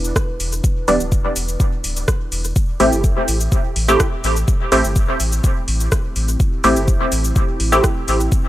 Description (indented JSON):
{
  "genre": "dub techno",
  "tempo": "125 BPM",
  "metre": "4/4",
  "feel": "straight",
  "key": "unclear",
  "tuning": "A4 = 440 Hz",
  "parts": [
    { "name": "dark analog pad", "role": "sustained chords", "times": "0.0-8.5 s", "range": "A3 to B4", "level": "-31 LUFS", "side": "right 2 dB", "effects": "chorus, phaser, sidechain pumping" },
    { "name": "warm sub bass", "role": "bass", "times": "0.0-8.3 s", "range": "D1 to A1", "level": "-20 LUFS", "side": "equal", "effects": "sidechain pumping" },
    { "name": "soft vintage rhythm box", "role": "drums", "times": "0.0-8.4 s", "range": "cabasa, hi-hat, rim click", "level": "-24 LUFS", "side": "left 1 dB", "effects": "overdrive" },
    { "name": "electronic kick drum", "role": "drums", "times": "0.2-8.4 s", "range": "none", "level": "-17 LUFS", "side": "equal", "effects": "none" },
    { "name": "filtered dub chord stab", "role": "stabs", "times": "0.9-7.8 s", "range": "E3 to G4", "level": "-18 LUFS", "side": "equal", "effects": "chorus, phaser, sidechain pumping, dub echo" }
  ],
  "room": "digital ambience",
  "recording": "dry, gritty hardware recording",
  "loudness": "-15 LUFS",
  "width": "side -15 dB against mid",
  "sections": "0.0-8.5 A section",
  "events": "none",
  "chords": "0.0 E7(no3); 2.6 Am7"
}